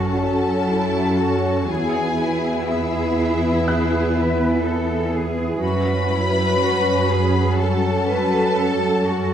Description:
cinematic, suspense film score; 61 BPM; 4/4; straight; F# minor; A4 = 442 Hz
warm symphonic violin section; melody; 0.0-9.3 s; E5 to B5; -28 LUFS; left 4 dB
warm symphonic violin section; second line; 0.0-9.3 s; E4 to B4; -25 LUFS; equal
rich symphonic viola section; accompaniment; 0.0-9.3 s; F#3 to E4; -25 LUFS; right 1 dB
glass harmonica; sustained chords; 0.0-9.3 s; F#4 to G#5; -28 LUFS; equal
mellow French horn section; sustained chords; 0.0-9.3 s; E3 to C#4; -25 LUFS; left 3 dB
rich symphonic cello section; bass; 0.0-9.3 s; C#4 to B4; -27 LUFS; right 2 dB
rich symphonic double bass section; bass; 0.0-9.3 s; E2 to F#2; -24 LUFS; right 3 dB
impact; sound effects; 0.0-1.7 s; -47 LUFS; equal
felt-muted upright piano; texture; 0.0-9.3 s; F#6 to A6; -34 LUFS; left 1 dB
wet scoring stage reverb, RT60 1.6 s; -17 LUFS; side -9 dB against mid
0.0-9.3 A section
impact 0.0-1.7
0.0 F#m; 1.7 E; 5.6 F#m

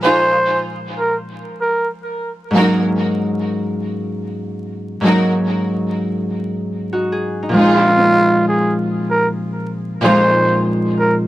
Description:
hip hop; 96 BPM; 4/4; swing 62% on 16ths; Bb minor; A4 = 439 Hz
trumpet with bucket mute; melody; 0.0-1.9, 7.5-11.2 s; F4 to C5; -16 LUFS; right 1 dB; tape echo
Celtic harp; accompaniment; 0.0-11.3 s; Ab2 to Ab4; -17 LUFS; equal; cassette tape
warm studio string section; stabs; 0.0-10.3 s; Eb4 to Bb4; -22 LUFS; right 1 dB; tape echo
light reverb; dry, gritty hardware recording, vinyl crackle; -14 LUFS; side -15 dB against mid
0.0-11.3 A section
break 0.0-2.5
0.0 Bb9sus4; 2.2 Ab9sus4; 7.5 Bb9sus4

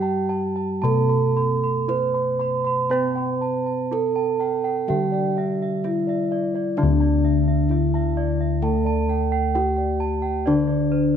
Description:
Javanese gamelan; 55-65 BPM; 4/4; straight; D slendro; A4 = 440 Hz
gamelan-type bronze metallophone; melody; 0.0-11.2 s; D4 to C5-45c; -24 LUFS; right 2 dB
gamelan-type bronze metallophone; accompaniment; 0.0-11.2 s; D3 to C4-45c; -26 LUFS; left 1 dB
gamelan-type bossed gongs; arpeggios; 0.0-11.2 s; C5-45c to C6-45c; -32 LUFS; left 2 dB
gamelan-type bronze metallophone; arpeggios; 0.0-11.2 s; C5-45c to C6-45c; -29 LUFS; right 7 dB
gamelan-type bossed gongs; bass; 0.0-11.2 s; D2 to C5-45c; -25 LUFS; left 2 dB
moderate recital hall reverb, RT60 1.4 s; -19 LUFS; side -8 dB against mid
0.0-6.8 A section; 6.8-11.2 B section

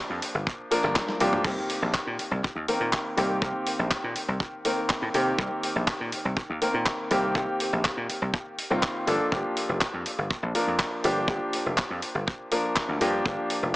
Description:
nu-disco, nu disco; 122 BPM; 4/4; straight; C minor; A4 = 438 Hz
bright concert grand piano; accompaniment; 0.0-13.8 s; Eb3 to Bb4; -27 LUFS; equal; sidechain pumping, low-pass filter, dub echo
dry thumbed slap bass; bass; 0.1-13.7 s; F1 to C3; -29 LUFS; equal; sidechain pumping
dusty soul sampler-style drum kit; drums; 0.2-13.6 s; crash cymbal, handclaps, hi-hat, snare drum, toms; -31 LUFS; equal; dub echo
kick drum; drums; 0.5-13.4 s; -29 LUFS; equal
moderate plate reverb, RT60 1.9 s, small room reverb; echo-heavy mix, small speaker sound; -24 LUFS; side -19 dB against mid
0.0-1.5 A section; 1.5-13.8 B section
drop 0.0-1.5; drum fill 1.0-1.5
0.0 Gm7; 1.5 Cm7; 9.1 Gm7

